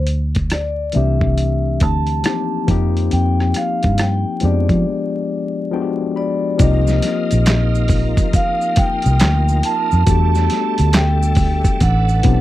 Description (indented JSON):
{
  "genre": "R&B, neo-soul",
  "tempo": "69 BPM",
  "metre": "4/4",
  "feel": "swing 64% on 16ths",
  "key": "unclear",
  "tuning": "A4 = 440 Hz",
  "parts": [
    { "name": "vibraphone with soft mallets", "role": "melody", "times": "0.0-12.4 s", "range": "D5 to A5", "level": "-22 LUFS", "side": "right 1 dB", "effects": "slapback echo" },
    { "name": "vintage muted fingered electric bass", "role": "bass", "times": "0.0-12.4 s", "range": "A1 to F3", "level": "-16 LUFS", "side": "equal", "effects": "none" },
    { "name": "dusty soul sampler-style drum kit", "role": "drums", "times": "0.1-12.4 s", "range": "handclaps, hi-hat, kick drum, rim click, snare drum", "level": "-18 LUFS", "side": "equal", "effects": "overdrive" },
    { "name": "barky tine electric piano", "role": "accompaniment", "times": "0.9-12.4 s", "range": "E3 to B5", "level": "-22 LUFS", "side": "left 7 dB", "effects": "overdrive" },
    { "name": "bright tonewheel organ", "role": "sustained chords", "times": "6.6-12.4 s", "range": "G3 to B4", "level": "-26 LUFS", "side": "right 2 dB", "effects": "chorus vibrato, slow rotary speaker" },
    { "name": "maracas and finger snaps", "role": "percussion", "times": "6.6-12.2 s", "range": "none", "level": "-32 LUFS", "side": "right 10 dB", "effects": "none" }
  ],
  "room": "little or no reverb",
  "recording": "dry, close 1970s-style studio recording, vinyl crackle",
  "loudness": "-14 LUFS",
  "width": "side -14 dB against mid",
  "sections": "0.0-6.6 A section; 6.6-12.4 B section",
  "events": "break 4.9-6.6; tine electric piano fill 5.3-6.6",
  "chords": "0.0 D9sus4; 2.7 F9sus4; 4.9 G7b9; 6.6 Cm11; 10.1 Em11; 11.8 Am11"
}